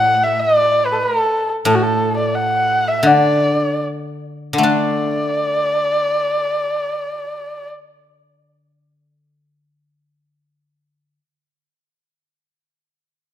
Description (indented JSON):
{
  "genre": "chinese traditional, Chinese chamber ensemble",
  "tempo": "71-102 BPM",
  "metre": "4/4",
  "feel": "straight",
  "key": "D gong mode",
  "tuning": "A4 = 442 Hz",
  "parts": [
    { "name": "dark erhu", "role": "melody", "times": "0.0-7.7 s", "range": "F#4 to F#5", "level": "-17 LUFS", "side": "equal", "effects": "none" },
    { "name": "guzheng", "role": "accompaniment", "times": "0.0-11.2 s", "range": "A2 to D4", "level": "-18 LUFS", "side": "left 2 dB", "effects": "none" }
  ],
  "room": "moderate recital hall reverb, RT60 1.5 s",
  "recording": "none",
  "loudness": "-15 LUFS",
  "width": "side -10 dB against mid",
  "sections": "0.0-4.7 A section; 4.7-8.0 B section",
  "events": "slowing down 0.0-4.7",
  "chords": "none"
}